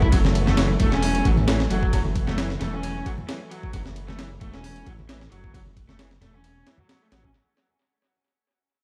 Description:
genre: breakbeat, breaks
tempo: 133 BPM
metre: 4/4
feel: swing 54% on 16ths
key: F# minor pentatonic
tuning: A4 = 441 Hz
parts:
  - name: muted studio string section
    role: sustained chords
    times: 0.0-7.3 s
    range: E3 to A3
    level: -33 LUFS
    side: equal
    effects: sidechain pumping
  - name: raw garage guitar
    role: riff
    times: 0.0-7.3 s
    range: E3 to E4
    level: -32 LUFS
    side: equal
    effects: overdrive, low-pass filter, tape echo
  - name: dark detuned saw bass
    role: bass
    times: 0.0-7.3 s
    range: E1 to C#2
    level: -28 LUFS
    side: equal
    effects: tube saturation
  - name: breakbeat sampler-style drum kit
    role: drums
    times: 0.0-7.3 s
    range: hi-hat, kick drum, ride cymbal, snare drum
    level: -27 LUFS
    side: equal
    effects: tape echo
  - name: tambourine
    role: drums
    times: 0.0-7.3 s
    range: none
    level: -51 LUFS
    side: equal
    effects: none
  - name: congas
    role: percussion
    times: 0.2-6.9 s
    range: none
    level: -34 LUFS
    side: equal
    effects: none
room: light reverb, digital ambience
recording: echo-heavy mix, vinyl crackle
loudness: -22 LUFS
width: mono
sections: 0.0-7.3 A section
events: fade-out 0.0-7.3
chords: 0.1 F#m7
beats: | 0.12 0.57 1.03 1.48 | 1.93 2.38 2.83 3.28 | 3.73 4.18 4.63 5.09 | 5.54 5.99 6.44 6.89

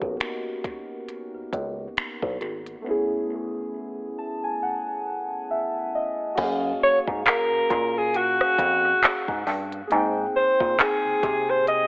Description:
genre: contemporary R&B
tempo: 68 BPM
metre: 4/4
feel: swing 58% on 16ths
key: F# major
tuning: A4 = 441 Hz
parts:
  - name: muted felt-like synth keys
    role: accompaniment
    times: 0.0-11.9 s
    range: A3 to A5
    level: -29 LUFS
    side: equal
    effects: chorus, analog delay
  - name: bell-like tine electric piano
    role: bass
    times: 0.0-11.9 s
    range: G#1 to B#2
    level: -27 LUFS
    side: equal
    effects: medium stereo tremolo
  - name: smooth R&B drum kit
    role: drums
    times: 0.0-11.9 s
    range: crash cymbal, finger snaps, handclaps, hi-hat, kick drum, rim click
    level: -24 LUFS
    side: equal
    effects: vintage 12-bit sampler grit, analog delay
  - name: warm alto saxophone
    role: melody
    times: 6.8-11.9 s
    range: F#4 to D#5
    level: -20 LUFS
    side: equal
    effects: analog delay
room: moderate echo chamber reverb, RT60 2.2 s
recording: echo-heavy mix, telephone sound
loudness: -22 LUFS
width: side -25 dB against mid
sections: 0.0-6.4 A section; 6.4-11.9 B section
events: synth keys fill 3.7-6.4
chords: 0.0 Bmaj9; 2.8 Amaj9; 6.4 F#maj9; 9.9 G#maj9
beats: 0.20 1.08 1.97 | 2.85 3.73 4.61 5.50 | 6.38 7.26 8.14 9.02 | 9.91 10.79 11.67

